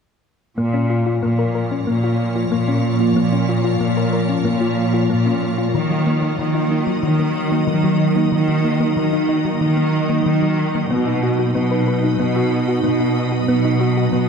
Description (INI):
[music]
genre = cinematic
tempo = 93 BPM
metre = 4/4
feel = straight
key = Bb phrygian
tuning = A4 = 440 Hz
[part]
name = soft additive organ-like pad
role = sustained chords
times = 1.2-14.3 s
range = F3 to Eb5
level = -20 LUFS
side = right 2 dB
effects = ensemble chorus, built-in reverb
[part]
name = thumb-piano-like synth pluck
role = arpeggios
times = 0.6-14.2 s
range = Eb3 to B4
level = -22 LUFS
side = left 4 dB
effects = chorus, ping-pong delay
[part]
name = warm studio cello section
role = bass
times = 0.6-14.3 s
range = Bb2 to Eb3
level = -20 LUFS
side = right 1 dB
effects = none
[sound]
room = moderate scoring stage reverb, RT60 1.6 s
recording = dark, warm production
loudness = -16 LUFS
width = side -6 dB against mid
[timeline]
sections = 0.6-14.3 A section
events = build-up 0.6-14.3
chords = 0.6 Bbm; 5.7 Ebm; 10.9 B